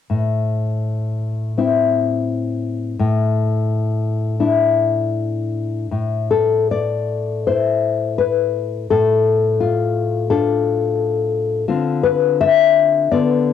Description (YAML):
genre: romantic piece for solo classical guitar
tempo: 72-88 BPM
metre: 4/4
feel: rubato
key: A minor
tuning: A4 = 440 Hz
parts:
  - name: nylon-string guitar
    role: solo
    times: 0.1-13.5 s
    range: A2 to E5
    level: -16 LUFS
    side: left 4 dB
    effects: cassette tape
room: light reverb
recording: home recording on cassette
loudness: -16 LUFS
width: side -9 dB against mid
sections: 0.1-5.9 A section; 5.9-13.5 B section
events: none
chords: 0.1 Am; 3.0 Asus4; 5.9 Am; 8.9 Dm/A; 11.7 Dm7